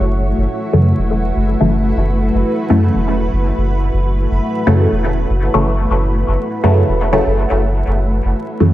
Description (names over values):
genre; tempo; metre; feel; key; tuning
dub techno; 122 BPM; 4/4; swing 54% on 16ths; F# minor; A4 = 440 Hz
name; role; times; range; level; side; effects
granular cloud pad; sustained chords; 0.0-8.7 s; A3 to C#5; -20 LUFS; equal; built-in reverb
soft dub sub bass; bass; 0.0-8.7 s; E1 to F#2; -15 LUFS; equal; tube saturation
filtered dub chord stab; stabs; 0.7-8.7 s; C#3 to A3; -17 LUFS; equal; phaser, dub echo
room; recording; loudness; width
light reverb, digital ambience; vinyl crackle; -13 LUFS; side -14 dB against mid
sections
0.0-7.9 A section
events
none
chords
0.0 F#m7